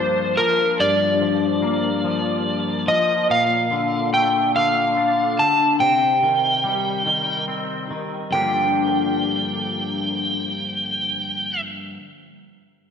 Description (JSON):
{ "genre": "rock", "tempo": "48 BPM (dotted quarters)", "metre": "6/8", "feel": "straight", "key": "G minor", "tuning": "A4 = 440 Hz", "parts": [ { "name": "overdriven slide guitar", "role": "melody", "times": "0.0-11.6 s", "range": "Bb4 to A5", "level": "-19 LUFS", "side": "right 1 dB", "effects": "slapback echo" }, { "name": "twangy electric guitar", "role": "arpeggios", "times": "0.0-12.0 s", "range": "G2 to G4", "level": "-23 LUFS", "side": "left 4 dB", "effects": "ensemble chorus, slapback echo" } ], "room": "wet concert hall reverb, RT60 2.2 s", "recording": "big arena sound", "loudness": "-18 LUFS", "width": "side -7 dB against mid", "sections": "0.0-8.3 A section; 8.3-10.8 B section", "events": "none", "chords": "0.0 Gm7; 3.3 Bbmaj7; 5.8 Cm; 8.3 Gm7" }